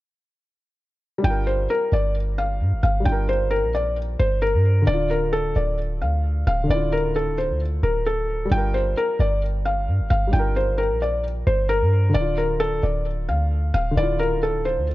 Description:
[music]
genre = hip hop, trap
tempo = 132 BPM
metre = 4/4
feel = half-time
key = unclear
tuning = A4 = 440 Hz
[part]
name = felt-muted upright piano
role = melody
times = 1.2-14.9 s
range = A4 to G5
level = -23 LUFS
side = left 1 dB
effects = low-pass filter, tape echo
[part]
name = dark baby grand piano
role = accompaniment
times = 1.2-14.9 s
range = D3 to Bb4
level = -29 LUFS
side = equal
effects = low-pass filter
[part]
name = clean 808-style bass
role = bass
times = 1.2-14.9 s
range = D1 to G2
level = -22 LUFS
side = equal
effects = none
[sound]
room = studio reverb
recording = dark, warm production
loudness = -19 LUFS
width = side -17 dB against mid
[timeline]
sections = 1.2-14.9 A section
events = none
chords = 1.2 Gm7; 4.9 Dmadd9; 8.5 Gm7; 12.2 Dmadd9

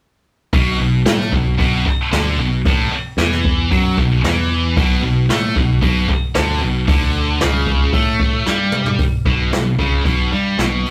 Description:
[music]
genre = hard rock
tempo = 113 BPM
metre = 4/4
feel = straight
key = B minor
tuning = A4 = 442 Hz
[part]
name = heavy high-gain guitar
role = riff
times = 0.5-10.8 s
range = A2 to A3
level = -21 LUFS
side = equal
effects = distortion
[part]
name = picked electric bass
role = bass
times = 0.5-10.8 s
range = A1 to A2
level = -22 LUFS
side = equal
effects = none
[part]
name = jazz brush drum kit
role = drums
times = 0.5-10.9 s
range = hi-hat, kick drum, snare drum, toms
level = -21 LUFS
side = equal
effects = none
[sound]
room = moderate studio reverb, RT60 0.6 s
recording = rough rehearsal-room recording, tube saturation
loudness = -17 LUFS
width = mono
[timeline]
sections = 0.5-9.0 A section; 9.0-10.9 B section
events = drum fill 8.5-9.0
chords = 0.5 Bm; 9.0 N.C.

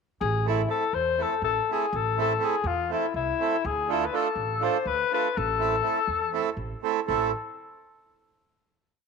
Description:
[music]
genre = balkan folk, Balkan wedding band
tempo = 244 BPM (eighths)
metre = 7/8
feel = straight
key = A harmonic minor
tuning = A4 = 440 Hz
[part]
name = breathy alto saxophone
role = melody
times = 0.2-7.3 s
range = E4 to C5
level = -26 LUFS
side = left 7 dB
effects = none
[part]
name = upright bass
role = bass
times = 0.2-7.3 s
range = A1 to E2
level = -32 LUFS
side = right 2 dB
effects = none
[part]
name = accordion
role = accompaniment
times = 0.5-7.3 s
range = A3 to A4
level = -29 LUFS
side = right 12 dB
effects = none
[sound]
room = wet spring reverb, RT60 1.6 s, studio ambience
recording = 1960s-style stereo with parts hard left and right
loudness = -24 LUFS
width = side -5 dB against mid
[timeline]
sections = 0.2-7.1 A section; 7.1-8.8 final chord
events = none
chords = 0.2 Am; 3.6 Dm; 5.3 Am

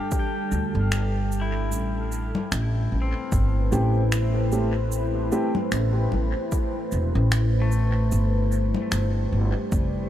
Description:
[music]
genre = ambient dub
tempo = 75 BPM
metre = 4/4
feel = swing 57% on 16ths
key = A minor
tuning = A4 = 443 Hz
[part]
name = deep dark ambient pad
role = sustained chords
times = 0.0-10.1 s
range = G3 to A5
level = -29 LUFS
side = equal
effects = chorus, built-in reverb
[part]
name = pedal steel guitar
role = arpeggios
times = 0.0-10.1 s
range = A3 to G5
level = -34 LUFS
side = left 4 dB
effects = dub echo
[part]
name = electronic cabasa, finger snaps and congas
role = drums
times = 0.1-9.9 s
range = none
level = -32 LUFS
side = left 2 dB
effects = dub echo
[part]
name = electronic kick drum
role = drums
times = 0.1-9.9 s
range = none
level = -25 LUFS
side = equal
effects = none
[part]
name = upright bass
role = bass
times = 0.5-10.1 s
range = E1 to D2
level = -23 LUFS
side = equal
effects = none
[part]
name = dark upright piano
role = stabs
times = 3.7-5.5 s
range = A3 to G4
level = -30 LUFS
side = right 2 dB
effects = dub echo
[sound]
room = light reverb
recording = none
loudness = -21 LUFS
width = side -12 dB against mid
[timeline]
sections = 0.0-10.1 A section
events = none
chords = 0.0 Gsus2; 1.7 Am7; 8.1 Gsus2

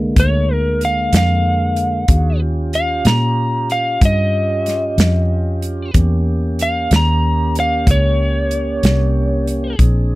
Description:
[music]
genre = slow blues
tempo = 62 BPM (dotted quarters)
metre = 12/8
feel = straight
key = unclear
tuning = A4 = 445 Hz
[part]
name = tonewheel organ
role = sustained chords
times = 0.0-10.2 s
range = D3 to Ab4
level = -23 LUFS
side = right 1 dB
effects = slow rotary speaker
[part]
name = vintage muted fingered electric bass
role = bass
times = 0.0-10.2 s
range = Bb1 to Bb2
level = -17 LUFS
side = equal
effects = none
[part]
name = lightly driven lead guitar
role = melody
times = 0.2-9.8 s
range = Bb4 to Bb5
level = -19 LUFS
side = equal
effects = none
[part]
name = natural country drum kit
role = drums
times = 0.2-9.9 s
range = hi-hat, kick drum, snare drum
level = -15 LUFS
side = equal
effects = none
[sound]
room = little or no reverb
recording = dry, close 1970s-style studio recording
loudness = -14 LUFS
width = side -19 dB against mid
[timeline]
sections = 0.0-10.2 A section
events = lead electric guitar solo 0.0-10.2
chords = 0.0 Bb7; 2.1 Eb7; 5.9 Edim7

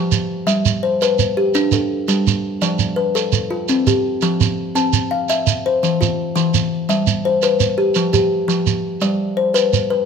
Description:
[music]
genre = southern african traditional, mbira-style interlocking cycle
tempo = 112 BPM (dotted quarters)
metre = 12/8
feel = straight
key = G mixolydian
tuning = A4 = 440 Hz
[part]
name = kalimba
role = arpeggios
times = 0.0-10.1 s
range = E3 to A5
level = -17 LUFS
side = left 2 dB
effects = none
[part]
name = shekere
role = percussion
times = 0.1-9.9 s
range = none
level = -20 LUFS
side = right 9 dB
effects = none
[sound]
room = moderate recital hall reverb, RT60 1.4 s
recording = close, detailed microphones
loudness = -15 LUFS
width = side -6 dB against mid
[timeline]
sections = 0.0-9.0 A section; 9.0-10.1 B section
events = none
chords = 0.5 G; 2.6 F; 4.8 C; 5.8 Cadd11/E; 6.9 G; 8.0 Fsus2; 9.0 G

